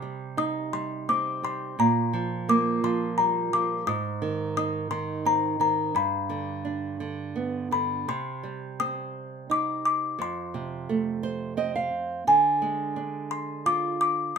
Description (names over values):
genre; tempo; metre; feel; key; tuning
children's music, lullaby; 86 BPM; 3/4; rubato; C minor from 8.1 s; A4 = 440 Hz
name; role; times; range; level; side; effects
music box; melody; 0.0-14.4 s; Ab5 to Eb6; -25 LUFS; left 3 dB; none
nylon-string guitar; accompaniment; 0.0-14.3 s; F2 to F5; -29 LUFS; right 5 dB; none
room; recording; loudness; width
moderate studio reverb, RT60 0.6 s; minimal, uncompressed stereo recording; -24 LUFS; side -6 dB against mid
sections
0.0-8.1 A section; 8.1-14.4 B section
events
nylon-string guitar fill 10.9-12.3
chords
0.0 Cm; 1.8 Bb6; 3.9 Ab; 6.0 G; 8.1 Cm; 10.2 F; 12.3 Ddim